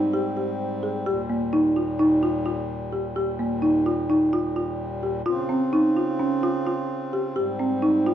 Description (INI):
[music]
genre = contemporary instrumental, chamber music in an uneven meter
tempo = 257 BPM (eighths)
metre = 9/8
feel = straight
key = Eb mixolydian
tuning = A4 = 439 Hz
[part]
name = hand-pumped harmonium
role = sustained chords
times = 0.0-8.1 s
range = Eb2 to F4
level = -28 LUFS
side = equal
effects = none
[part]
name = folk marimba with medium mallets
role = arpeggios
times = 0.0-8.1 s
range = Bb3 to Ab4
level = -22 LUFS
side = equal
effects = none
[sound]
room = moderate recital hall reverb, RT60 1.5 s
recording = dark, warm production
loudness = -21 LUFS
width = side -10 dB against mid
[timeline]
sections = 0.0-8.1 A section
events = none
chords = 0.0 Abmaj7; 1.1 Eb; 5.3 Dbmaj7; 7.4 Abmaj7